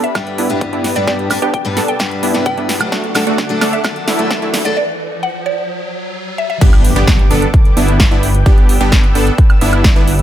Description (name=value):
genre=EDM, festival progressive house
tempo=130 BPM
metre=4/4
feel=straight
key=G major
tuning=A4 = 440 Hz
part: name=mallet-like synth pluck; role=melody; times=0.0-6.6 s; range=D5 to G5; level=-22 LUFS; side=equal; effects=analog chorus, ping-pong delay
part: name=lush unison pad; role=sustained chords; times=0.0-10.2 s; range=G4 to E6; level=-26 LUFS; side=left 1 dB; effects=chorus, vintage 12-bit sampler grit, sidechain pumping
part: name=supersaw stab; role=riff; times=0.0-10.1 s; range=A3 to A4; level=-18 LUFS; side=right 1 dB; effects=sidechain pumping, low-pass filter, ping-pong delay
part: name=wide detuned saw bass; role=bass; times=0.0-10.2 s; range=G1 to D2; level=-18 LUFS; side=equal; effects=chorus, sidechain pumping, high-pass filter
part: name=big-room dance drum kit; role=drums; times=0.0-10.2 s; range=crash cymbal, hi-hat, snare drum, woodblock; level=-19 LUFS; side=right 1 dB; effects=none
part: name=riser and impact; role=sound effects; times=1.4-8.5 s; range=none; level=-25 LUFS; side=equal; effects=none
part: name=picked steel-string acoustic guitar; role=accompaniment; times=0.1-4.8 s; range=G2 to B4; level=-20 LUFS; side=left 3 dB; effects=sidechain pumping
part: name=electronic kick drum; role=drums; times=0.2-9.9 s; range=none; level=-10 LUFS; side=equal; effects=high-pass filter on kick
room=light reverb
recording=high-pass filter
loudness=-11 LUFS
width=side -12 dB against mid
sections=0.0-6.6 A section; 6.6-10.2 B section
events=build-up 0.0-6.6; drum fill 0.0-4.8; filter sweep on supersaw synth 0.0-6.6; riser 1.4-6.6; break 4.8-6.6; drop 6.6-10.2; impact 6.6-8.5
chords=0.0 G; 2.9 D; 6.6 G